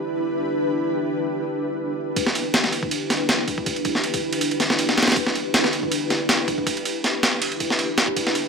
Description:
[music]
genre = drum and bass, jungle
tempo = 160 BPM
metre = 4/4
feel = swing 54% on 16ths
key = E minor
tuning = A4 = 440 Hz
[part]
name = ethereal airy pad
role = sustained chords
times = 0.0-8.5 s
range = D4 to B4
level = -24 LUFS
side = equal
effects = ensemble chorus, built-in reverb, tremolo, vintage 12-bit sampler grit
[part]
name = breakbeat sampler-style drum kit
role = drums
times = 2.2-8.4 s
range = kick drum, ride cymbal, snare drum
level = -20 LUFS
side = right 1 dB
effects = high-pass filter on cymbals, studio ambience, high-pass filter on kick, high-pass filter on snare
[sound]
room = moderate plate reverb, RT60 2.7 s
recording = none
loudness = -20 LUFS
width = side -5 dB against mid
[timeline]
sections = 0.0-2.2 A section; 2.2-8.5 B section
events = build-up 2.2-8.5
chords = 0.0 Em7

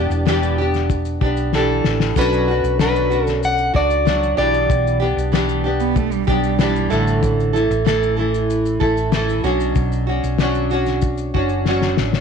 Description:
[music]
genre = acoustic pop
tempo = 95 BPM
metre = 4/4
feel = straight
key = B minor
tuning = A4 = 440 Hz
[part]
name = nylon-string guitar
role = accompaniment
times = 0.0-12.2 s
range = A2 to A4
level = -19 LUFS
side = right 1 dB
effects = double-tracked left and right
[part]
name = hollow-body short-scale fingered electric bass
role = bass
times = 0.0-12.2 s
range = E1 to C#2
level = -22 LUFS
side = equal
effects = none
[part]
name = cloth-damped thuddy drum kit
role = drums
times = 0.1-12.2 s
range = kick drum, shaker, snare drum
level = -22 LUFS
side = left 5 dB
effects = none
[part]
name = fingerpicked plugged-in steel-string acoustic guitar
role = melody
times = 1.6-5.0 s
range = A4 to F#5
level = -19 LUFS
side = left 1 dB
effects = none
[part]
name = warm cello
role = second line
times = 5.8-6.9 s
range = F#3 to B3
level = -23 LUFS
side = right 13 dB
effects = none
[sound]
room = moderate plate reverb, RT60 1.2 s, small room ambience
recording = 1960s-style stereo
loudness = -16 LUFS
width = side -6 dB against mid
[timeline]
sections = 0.0-12.2 A section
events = drum fill 1.5-2.2, 11.7-12.2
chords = 0.0 Em7; 2.2 Bmadd9; 4.4 Em7/B; 6.9 Asus4; 9.4 Bmadd9

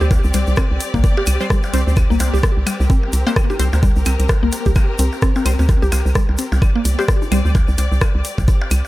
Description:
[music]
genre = minimal techno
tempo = 129 BPM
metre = 4/4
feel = swing 58% on 16ths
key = unclear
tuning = A4 = 440 Hz
[part]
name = mallet-like synth pluck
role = riff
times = 0.0-7.4 s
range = G3 to G4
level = -23 LUFS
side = left 1 dB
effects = chorus, cassette tape, sidechain pumping, tape echo
[part]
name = hollow knocking FM bass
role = bass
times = 0.0-8.8 s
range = C2 to D2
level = -17 LUFS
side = equal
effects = sidechain pumping
[part]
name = egg shaker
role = percussion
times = 0.0-8.9 s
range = none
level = -32 LUFS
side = left 2 dB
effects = none
[part]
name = clear studio string section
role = texture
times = 0.0-8.9 s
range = C4 to D5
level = -28 LUFS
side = left 2 dB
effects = sidechain pumping
[part]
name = electronic kick drum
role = drums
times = 0.1-8.6 s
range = none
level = -15 LUFS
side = equal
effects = none
[part]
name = percussion blips and claves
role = percussion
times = 0.1-8.9 s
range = none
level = -31 LUFS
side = left 1 dB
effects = tape echo
[part]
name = garage drum kit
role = drums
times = 0.3-8.8 s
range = hi-hat, rim click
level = -25 LUFS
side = left 1 dB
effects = analog delay
[part]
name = filtered dub chord stab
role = stabs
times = 1.4-7.4 s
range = G3 to C5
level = -28 LUFS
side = left 3 dB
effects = phaser, analog delay
[sound]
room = little or no reverb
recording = echo-heavy mix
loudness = -14 LUFS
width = side -17 dB against mid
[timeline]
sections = 0.0-8.9 A section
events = none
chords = 0.0 C5

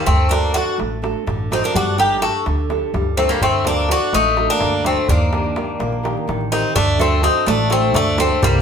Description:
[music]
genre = greek folk, Greek bouzouki band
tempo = 251 BPM (eighths)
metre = 7/8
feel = straight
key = D phrygian dominant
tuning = A4 = 441 Hz
[part]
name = Greek bouzouki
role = melody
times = 0.0-8.6 s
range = Bb3 to A4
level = -19 LUFS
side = left 2 dB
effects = none
[part]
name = Greek bouzouki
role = second line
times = 0.0-8.6 s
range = G3 to F#4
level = -23 LUFS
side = left 2 dB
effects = none
[part]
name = nylon-string guitar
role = accompaniment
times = 0.0-8.6 s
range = C3 to Bb4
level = -23 LUFS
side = right 4 dB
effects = none
[part]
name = upright bass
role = bass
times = 0.1-8.6 s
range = G1 to Eb2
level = -22 LUFS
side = equal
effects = none
[part]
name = darbuka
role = percussion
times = 0.1-8.6 s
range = none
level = -24 LUFS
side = right 1 dB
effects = none
[sound]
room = wet studio reverb, RT60 0.8 s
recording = band playing live in one room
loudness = -15 LUFS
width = side -7 dB against mid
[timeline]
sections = 0.0-6.8 A section; 6.8-8.6 B section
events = none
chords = 0.1 D; 1.7 Gsus2; 3.4 D; 5.1 Eb; 6.8 D

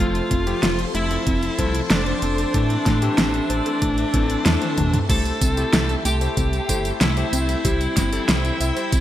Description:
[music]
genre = synthwave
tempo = 94 BPM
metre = 4/4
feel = straight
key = C major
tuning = A4 = 438 Hz
[part]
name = fuzz lead guitar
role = melody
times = 0.0-9.0 s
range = D4 to A4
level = -24 LUFS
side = equal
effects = distortion, digital delay
[part]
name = string machine, full ensemble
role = sustained chords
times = 0.0-9.0 s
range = A4 to E6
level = -30 LUFS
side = equal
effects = phaser, ensemble chorus, sidechain pumping
[part]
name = soft round pluck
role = arpeggios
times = 0.0-9.0 s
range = A3 to E5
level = -30 LUFS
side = right 2 dB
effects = chorus, cassette tape, digital delay
[part]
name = bright electric grand piano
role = stabs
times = 0.0-9.0 s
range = E3 to C5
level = -29 LUFS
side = left 6 dB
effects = none
[part]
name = dark detuned saw bass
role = bass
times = 0.0-9.0 s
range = F1 to A2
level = -24 LUFS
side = equal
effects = none
[part]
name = pop drum kit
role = drums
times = 0.1-9.0 s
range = crash cymbal, hi-hat, snare drum, tambourine, toms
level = -23 LUFS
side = equal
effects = overdrive, gated reverb
[part]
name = electronic kick drum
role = drums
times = 0.3-9.0 s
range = none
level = -23 LUFS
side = equal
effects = overdrive
[sound]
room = light reverb, digital ambience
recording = bright 1980s-style digital production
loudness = -18 LUFS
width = side -12 dB against mid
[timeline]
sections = 0.0-9.0 A section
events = drum fill 4.6-5.1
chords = 0.0 F; 2.5 Am; 5.1 C6

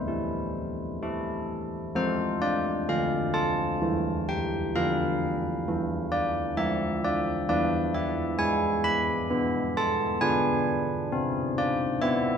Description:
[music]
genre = classical, tune for church bells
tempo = 66 BPM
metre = 3/4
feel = straight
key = unclear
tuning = A4 = 440 Hz
[part]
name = carillon bells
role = solo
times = 0.0-12.4 s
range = D3 to B5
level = -25 LUFS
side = equal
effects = none
[sound]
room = moderate scoring stage reverb, RT60 2.0 s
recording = dark, warm production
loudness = -25 LUFS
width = side -7 dB against mid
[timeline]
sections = 0.0-2.0 A section; 2.0-12.4 B section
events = none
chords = 0.0 Am; 2.0 F; 4.7 Bdim/D; 7.5 E; 10.2 Bm6

